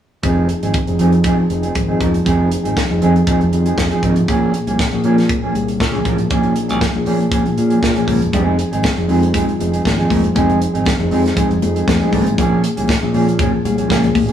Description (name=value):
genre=disco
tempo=119 BPM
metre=4/4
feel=straight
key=F minor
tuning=A4 = 437 Hz
part: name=mellow electric guitar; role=accompaniment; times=0.2-14.3 s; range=F3 to Bb4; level=-18 LUFS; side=right 2 dB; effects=none
part: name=mellow reed electric piano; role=accompaniment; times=0.2-14.3 s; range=Bb2 to Bb4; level=-19 LUFS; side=left 1 dB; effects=fast tremolo
part: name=modern bright fingered electric bass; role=bass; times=0.2-14.3 s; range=E1 to Bb2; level=-21 LUFS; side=right 1 dB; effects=none
part: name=tight funk drum kit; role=drums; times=0.2-14.3 s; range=hi-hat, kick drum, snare drum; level=-21 LUFS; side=right 1 dB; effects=none
part: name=congas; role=percussion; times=8.3-14.3 s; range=none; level=-22 LUFS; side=left 5 dB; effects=none
room=moderate stone room reverb, RT60 1.2 s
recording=band playing live in one room, small room ambience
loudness=-13 LUFS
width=side -9 dB against mid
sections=0.2-14.3 A section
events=none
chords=0.2 Fm7; 4.3 Bbm7; 8.3 Fm7; 12.4 Bbm7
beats=| 0.24 0.74 1.25 1.75 | 2.26 2.77 3.27 3.78 | 4.28 4.79 5.29 5.80 | 6.31 6.81 7.32 7.82 | 8.33 8.84 9.34 9.85 | 10.36 10.86 11.37 11.88 | 12.38 12.89 13.40 13.90